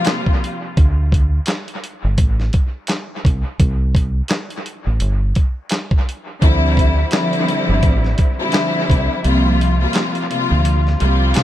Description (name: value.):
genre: hip hop, boom-bap hip-hop.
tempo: 85 BPM.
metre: 4/4.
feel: swing 58% on 16ths.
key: D minor.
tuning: A4 = 438 Hz.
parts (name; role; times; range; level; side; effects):
warm symphonic string section; accompaniment; 0.0-0.5, 6.4-11.4 s; C3 to F4; -18 LUFS; left 1 dB; dub echo.
dusty soul sampler-style drum kit; drums; 0.0-11.4 s; handclaps, hi-hat, kick drum, snare drum; -18 LUFS; equal; dub echo.
deep dub fingered electric bass; bass; 0.8-11.4 s; G1 to C3; -16 LUFS; equal; none.
room: little or no reverb.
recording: echo-heavy mix.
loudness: -15 LUFS.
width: side -13 dB against mid.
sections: 0.0-11.4 A section.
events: kick muted 9.2-11.4.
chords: 0.0 C7sus4; 0.8 D5; 3.6 C5; 6.4 Dm11; 9.2 C7sus4.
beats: 0.07 | 0.78 1.48 2.19 2.89 | 3.60 4.30 5.01 5.72 | 6.42 7.13 7.83 8.54 | 9.24 9.95 10.66 11.36.